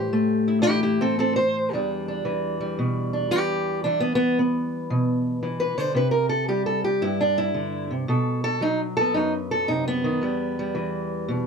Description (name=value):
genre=acoustic country blues, solo or duo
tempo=113 BPM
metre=4/4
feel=swing 66% on 8ths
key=E minor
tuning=A4 = 440 Hz
part: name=fingerpicked steel-string acoustic guitar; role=solo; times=0.0-11.5 s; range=E2 to C5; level=-21 LUFS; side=equal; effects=none
room=moderate small room reverb, RT60 0.5 s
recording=none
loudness=-21 LUFS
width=side -5 dB against mid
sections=0.0-11.5 A section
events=steel-string acoustic guitar solo 0.0-11.5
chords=0.0 Am7; 1.7 Em7; 6.0 C; 8.1 B7b9; 10.2 Em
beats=0.12 0.65 1.18 | 1.72 2.25 2.78 3.31 | 3.84 4.37 4.90 5.43 | 5.96 6.49 7.03 7.56 | 8.09 8.62 9.15 9.68 | 10.21 10.74 11.28